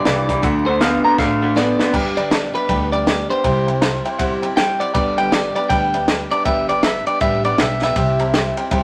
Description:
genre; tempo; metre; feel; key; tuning
rockabilly; 159 BPM; 4/4; swing 62% on 8ths; G major; A4 = 440 Hz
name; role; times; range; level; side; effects
electric guitar at the edge of break-up; melody; 0.0-8.6 s; B4 to Bb5; -22 LUFS; equal; none
picked steel-string acoustic guitar; accompaniment; 0.0-8.8 s; G2 to B4; -28 LUFS; equal; none
electric guitar through a small old amp; riff; 0.0-1.9 s; G2 to B3; -20 LUFS; equal; none
upright bass; bass; 0.0-8.8 s; G1 to G2; -28 LUFS; equal; none
clear upright piano; accompaniment; 0.1-8.8 s; A4 to A5; -28 LUFS; equal; none
compact cocktail drum kit; drums; 0.1-8.8 s; crash cymbal, hi-hat, kick drum, ride cymbal, snare drum; -23 LUFS; equal; none
room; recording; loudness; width
moderate studio reverb, RT60 0.7 s; vinyl crackle; -18 LUFS; mono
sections
0.0-1.9 A section; 1.9-8.8 B section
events
drum fill 1.2-1.9, 7.8; clean electric guitar solo 1.9-8.8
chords
0.4 D; 1.9 G; 3.4 C; 4.9 G; 8.0 C

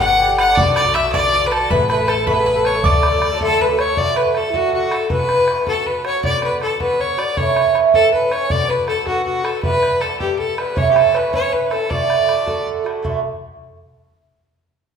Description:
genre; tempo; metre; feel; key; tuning
celtic folk, Celtic jig; 106 BPM (dotted quarters); 6/8; straight; D major; A4 = 440 Hz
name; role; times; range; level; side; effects
bright fiddle; melody; 0.0-12.7 s; F#4 to F#5; -19 LUFS; left 1 dB; none
baroque flute; second line; 0.0-12.7 s; E4 to G5; -22 LUFS; left 7 dB; none
mandolin; second line; 0.0-3.7 s; F#5 to E6; -23 LUFS; right 2 dB; none
Irish bouzouki; accompaniment; 0.0-13.2 s; G2 to A4; -20 LUFS; right 6 dB; none
upright bass; bass; 0.0-3.9 s; G1 to D2; -24 LUFS; left 1 dB; none
bodhran; percussion; 0.0-13.2 s; none; -25 LUFS; right 1 dB; none
room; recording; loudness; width
wet recital hall reverb, RT60 1.4 s; minimal, uncompressed stereo recording; -15 LUFS; side -7 dB against mid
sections
0.0-4.0 A section; 4.0-13.0 B section; 13.0-14.2 C section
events
none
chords
0.0 G; 0.6 Bm; 1.7 Aadd9; 2.8 D; 5.1 Emadd9; 6.2 Bm; 7.4 A; 8.5 Bm; 9.6 Em; 10.8 A; 11.9 D

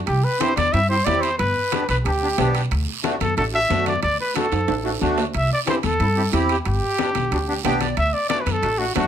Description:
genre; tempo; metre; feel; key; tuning
latin, cumbia; 182 BPM; 4/4; straight; G major; A4 = 440 Hz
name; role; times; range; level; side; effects
breathy trumpet; melody; 0.1-9.1 s; F#4 to E5; -22 LUFS; equal; none
upright bass; bass; 0.1-9.1 s; G1 to G2; -23 LUFS; equal; none
guiro; percussion; 0.1-9.1 s; none; -33 LUFS; right 8 dB; none
timbales; percussion; 0.1-9.1 s; none; -29 LUFS; right 8 dB; none
congas; percussion; 0.2-9.1 s; none; -28 LUFS; left 10 dB; none
accordion; accompaniment; 0.4-9.1 s; A3 to G5; -25 LUFS; right 1 dB; light tremolo tuning
room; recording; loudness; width
light reverb; none; -18 LUFS; side -9 dB against mid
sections
0.0-9.1 A section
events
drum fill 4.5-5.3; accordion fill 7.5-8.0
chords
0.1 C; 1.4 G; 2.7 D; 5.3 C; 6.7 G; 8.0 D

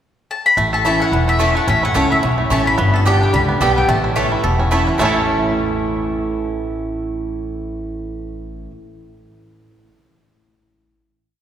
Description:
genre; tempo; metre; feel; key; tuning
bluegrass; 217 BPM; 4/4; swing 56% on 8ths; A mixolydian; A4 = 438 Hz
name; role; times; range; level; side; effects
mandolin; melody; 0.3-4.7 s; C#5 to B5; -19 LUFS; left 2 dB; none
picked steel-string acoustic guitar; accompaniment; 0.6-8.7 s; E2 to G4; -21 LUFS; equal; none
bluegrass banjo; arpeggios; 0.6-8.7 s; E3 to A4; -22 LUFS; right 2 dB; none
upright bass; bass; 0.6-8.7 s; E1 to C#2; -21 LUFS; equal; none
mandolin; stabs; 0.8-8.7 s; A3 to A5; -23 LUFS; right 3 dB; none
room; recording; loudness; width
wet church reverb, RT60 3.5 s; recorded in a church or concert hall; -15 LUFS; side -10 dB against mid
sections
0.0-0.6 pickup bar; 0.6-5.0 A section; 5.0-7.2 final chord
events
none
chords
0.0 N.C.; 0.6 A; 2.8 G; 3.9 A

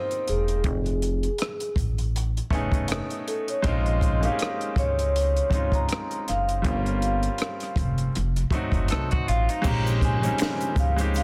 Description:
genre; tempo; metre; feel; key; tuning
R&B, neo-soul; 80 BPM; 4/4; swing 57% on 16ths; F minor; A4 = 440 Hz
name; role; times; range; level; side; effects
vibraphone with soft mallets; melody; 0.0-11.2 s; Ab4 to Bb5; -31 LUFS; equal; none
bright grand piano; accompaniment; 0.0-11.2 s; Gb3 to G5; -32 LUFS; equal; none
compact cocktail drum kit; drums; 0.1-11.2 s; crash cymbal, hi-hat, kick drum, rim click, snare drum; -30 LUFS; equal; soft clipping on snare
upright bass; bass; 0.3-11.2 s; E1 to Db2; -28 LUFS; equal; none
electric guitar at the edge of break-up; second line; 8.9-9.8 s; Eb4 to A4; -35 LUFS; equal; none
tonewheel organ; sustained chords; 9.6-11.2 s; Db3 to Bb3; -39 LUFS; equal; none
egg shaker and finger snaps; percussion; 9.6-11.2 s; none; -40 LUFS; equal; none
room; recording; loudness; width
light reverb, small room ambience; dense, heavily limited modern master; -25 LUFS; mono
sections
0.0-9.6 A section; 9.6-11.2 B section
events
none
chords
0.0 Ab69; 0.6 F7alt; 3.6 Bbm7; 6.6 Gm7b5; 8.1 F7b9; 9.6 Bbm11

